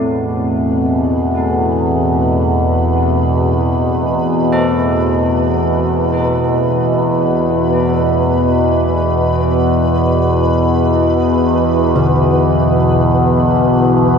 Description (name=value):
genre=dark ambient drone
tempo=free time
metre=none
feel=none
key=unclear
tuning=A4 = 443 Hz
part: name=deep dark ambient pad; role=sustained chords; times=0.0-14.2 s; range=E4 to F#5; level=-24 LUFS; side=right 2 dB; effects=chorus, built-in reverb
part: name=carillon bells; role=arpeggios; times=0.0-14.2 s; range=B2 to A4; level=-19 LUFS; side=left 1 dB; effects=diffuse ambient delay
part: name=overtone-sweeping drone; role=drone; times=0.0-14.2 s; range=E2 to B2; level=-13 LUFS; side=equal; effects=chorus, built-in reverb
part: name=flickering grainy texture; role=texture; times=0.3-14.2 s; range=B4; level=-27 LUFS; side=right 2 dB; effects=built-in reverb
room=wet huge ambient reverb, RT60 8.3 s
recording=dark, warm production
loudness=-12 LUFS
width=side -6 dB against mid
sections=0.0-14.2 A section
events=fade-in on ambient pad 0.0-14.2; fade-in on synth texture 0.0-14.2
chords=0.0 Esus2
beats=free time